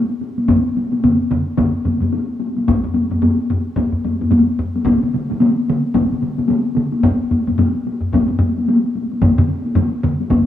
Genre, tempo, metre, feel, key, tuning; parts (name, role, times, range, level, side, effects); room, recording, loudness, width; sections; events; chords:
japanese traditional, taiko drum ensemble; 110 BPM; 4/4; swing 60% on 16ths
taiko ensemble; percussion; 0.2-10.5 s; -16 LUFS; left 2 dB
taiko ensemble; percussion; 0.5-10.5 s; -20 LUFS; left 1 dB
taiko ensemble; percussion; 0.5-10.5 s; -24 LUFS; right 3 dB
taiko ensemble; percussion; 0.5-10.5 s; -23 LUFS; right 1 dB
light reverb, small room ambience; rough home demo mix; -15 LUFS; side -11 dB against mid
0.0-10.5 A section